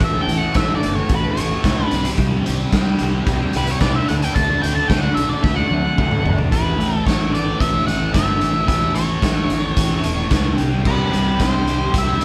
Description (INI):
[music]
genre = psychedelic rock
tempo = 111 BPM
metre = 4/4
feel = straight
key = unclear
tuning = A4 = 435 Hz
[part]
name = octave-fuzz lead guitar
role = melody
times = 0.0-12.2 s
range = B4 to A5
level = -25 LUFS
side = equal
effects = distortion
[part]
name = rich studio string section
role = sustained chords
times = 0.0-6.5, 10.9-12.2 s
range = G3 to A4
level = -33 LUFS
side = equal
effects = none
[part]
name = thick fuzz guitar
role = riff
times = 0.0-12.2 s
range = A2 to D4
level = -26 LUFS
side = equal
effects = distortion, phaser
[part]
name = fingered electric bass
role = bass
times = 0.0-12.2 s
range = E1 to D2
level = -25 LUFS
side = equal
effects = none
[part]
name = raw garage drum kit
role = drums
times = 0.0-12.2 s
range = crash cymbal, hi-hat, kick drum, snare drum, toms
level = -22 LUFS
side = equal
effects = none
[sound]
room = moderate studio reverb, RT60 0.7 s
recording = band playing live in one room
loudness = -18 LUFS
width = mono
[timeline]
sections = 0.0-6.5 A section; 6.5-12.2 B section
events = lead electric guitar solo 0.0-6.5; drum fill 5.4-6.5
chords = 0.0 A; 1.9 C; 4.1 Dadd9; 6.5 A; 10.6 C